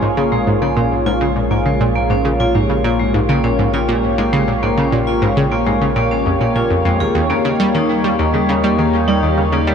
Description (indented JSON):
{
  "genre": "ambient, sequencer-driven space music",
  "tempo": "101 BPM",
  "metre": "4/4",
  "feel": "straight",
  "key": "Bb dorian",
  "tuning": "A4 = 440 Hz",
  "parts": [
    { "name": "sweeping resonant pad", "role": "sustained chords", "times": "0.0-9.7 s", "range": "Bb3 to Db5", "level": "-18 LUFS", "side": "equal", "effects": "chorus" },
    { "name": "analog pluck", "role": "riff", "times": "0.0-9.7 s", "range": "Eb2 to G3", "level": "-18 LUFS", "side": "right 1 dB", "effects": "chorus, tape echo" },
    { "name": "round analog bass", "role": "bass", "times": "0.0-9.7 s", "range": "Bb1 to Eb2", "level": "-24 LUFS", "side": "equal", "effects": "none" },
    { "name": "bubbling stepped-filter texture", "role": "texture", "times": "0.0-9.7 s", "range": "F4 to F5", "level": "-38 LUFS", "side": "right 1 dB", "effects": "none" },
    { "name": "vibraphone with hard mallets", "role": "arpeggios", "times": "0.2-9.7 s", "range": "G3 to Ab4", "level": "-20 LUFS", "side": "left 2 dB", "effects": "auto-pan, tape echo" }
  ],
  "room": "wet huge ambient reverb, RT60 8.5 s",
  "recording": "nothing above 10.9 kHz",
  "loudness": "-13 LUFS",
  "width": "side -7 dB against mid",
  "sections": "0.0-9.7 A section",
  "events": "none",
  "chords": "0.0 Bbm7; 7.2 Eb7",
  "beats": "| 0.02 0.62 1.21 1.80 | 2.40 2.99 3.59 4.18 | 4.78 5.37 5.96 6.56 | 7.15 7.75 8.34 8.93 | 9.53"
}